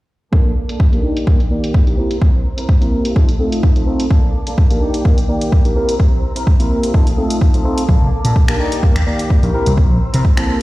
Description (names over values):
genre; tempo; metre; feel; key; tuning
filtered disco house; 127 BPM; 4/4; swing 53% on 16ths; Bb major; A4 = 440 Hz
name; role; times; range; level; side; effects
tine electric piano; accompaniment; 0.3-10.6 s; Eb3 to D5; -20 LUFS; equal; phaser, sidechain pumping, low-pass filter
clear studio string section; sustained chords; 0.3-10.6 s; Bb3 to G6; -32 LUFS; left 2 dB; sidechain pumping, low-pass filter
clean electric guitar; riff; 0.3-10.5 s; Bb3 to Bb4; -27 LUFS; right 2 dB; sidechain pumping, low-pass filter
electronic kick drum; drums; 0.3-10.3 s; none; -13 LUFS; equal; overdrive
punchy analog drum machine; drums; 0.7-10.5 s; finger snaps, hi-hat; -28 LUFS; equal; overdrive, sidechain pumping on hats, low-pass filter on hats, low-pass filter on snare, low-pass filter on room
vintage slap bass; bass; 7.9-10.2 s; F1 to C3; -16 LUFS; equal; sidechain pumping, low-pass filter
room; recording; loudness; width
digital ambience; played on a big sound system in a bare room, stone room reverb; -12 LUFS; side -18 dB against mid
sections
0.3-10.6 A section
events
filter sweep 0.3-10.6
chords
0.3 Bbmaj7; 1.0 Ebmaj7; 2.0 C7; 3.2 F7; 4.1 Bbmaj7; 4.8 Ebmaj7; 5.8 C7; 6.9 F7; 7.9 Bbmaj7; 8.6 Ebmaj7; 9.5 C7